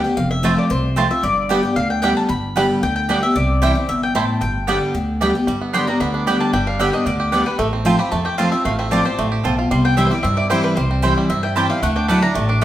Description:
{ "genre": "bluegrass", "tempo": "226 BPM", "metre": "4/4", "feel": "straight", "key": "G mixolydian", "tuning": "A4 = 439 Hz", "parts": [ { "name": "mandolin", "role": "melody", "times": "0.0-12.6 s", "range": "A4 to C6", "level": "-23 LUFS", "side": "left 2 dB", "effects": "none" }, { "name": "picked steel-string acoustic guitar", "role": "accompaniment", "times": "0.0-12.6 s", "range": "F2 to G4", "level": "-20 LUFS", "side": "left 1 dB", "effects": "none" }, { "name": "upright bass", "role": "bass", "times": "0.2-12.6 s", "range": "F1 to G2", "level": "-22 LUFS", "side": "equal", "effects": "none" }, { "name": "bluegrass banjo", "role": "melody", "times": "0.4-12.6 s", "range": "G3 to G4", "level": "-25 LUFS", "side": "right 4 dB", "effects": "none" }, { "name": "mandolin", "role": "stabs", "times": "0.4-12.6 s", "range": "A3 to A5", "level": "-24 LUFS", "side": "right 4 dB", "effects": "none" } ], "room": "wet large studio reverb, RT60 1.2 s", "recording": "band playing live in one room", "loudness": "-16 LUFS", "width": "side -12 dB against mid", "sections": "0.0-5.5 A section; 5.5-12.6 B section", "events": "mandolin solo 5.5-12.6", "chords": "0.2 F; 1.2 G; 3.4 C; 4.4 G; 7.6 F/A; 9.7 C; 11.8 Dadd9" }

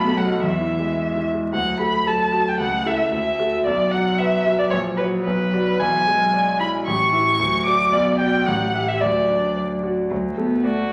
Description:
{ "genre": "quick classical-period movement for piano trio", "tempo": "112 BPM", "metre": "2/4", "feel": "straight", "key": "D major", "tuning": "A4 = 440 Hz", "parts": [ { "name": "rich violin", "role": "melody", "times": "0.0-10.9 s", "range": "F#4 to D6", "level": "-23 LUFS", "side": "equal", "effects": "none" }, { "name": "rich cello", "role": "second line", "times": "0.0-10.9 s", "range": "E3 to B3", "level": "-29 LUFS", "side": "equal", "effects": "none" }, { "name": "bright concert grand piano", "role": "accompaniment", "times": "0.0-10.9 s", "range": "A1 to E5", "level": "-25 LUFS", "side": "equal", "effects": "none" } ], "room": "wet recital hall reverb, RT60 1.6 s", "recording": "vinyl crackle", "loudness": "-20 LUFS", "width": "mono", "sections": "0.0-1.5 A section; 1.5-10.1 B section", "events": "none", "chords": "0.4 E; 1.5 D; 2.6 A/C#; 3.1 D; 3.7 B5; 4.7 F#/A#; 5.3 Bm; 5.8 E7/B; 6.9 A; 7.4 D; 7.9 Bm; 8.5 A5; 9.0 D" }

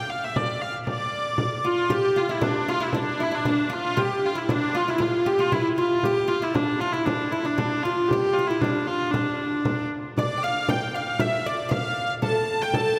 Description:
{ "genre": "medieval dance", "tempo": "116 BPM", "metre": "2/4", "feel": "straight", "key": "D minor", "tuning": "A4 = 442 Hz", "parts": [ { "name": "clear hurdy-gurdy", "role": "melody", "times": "0.0-13.0 s", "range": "D4 to A5", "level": "-27 LUFS", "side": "equal", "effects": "none" }, { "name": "frame drum", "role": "percussion", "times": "0.4-13.0 s", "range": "none", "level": "-32 LUFS", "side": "equal", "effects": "none" }, { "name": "oud", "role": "second line", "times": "1.6-13.0 s", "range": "D4 to G5", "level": "-30 LUFS", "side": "equal", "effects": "none" } ], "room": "wet church reverb, RT60 3.7 s", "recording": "none", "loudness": "-24 LUFS", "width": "mono", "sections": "0.0-1.9 A section; 1.9-10.2 A section; 10.2-13.0 B section", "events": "none", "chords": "none" }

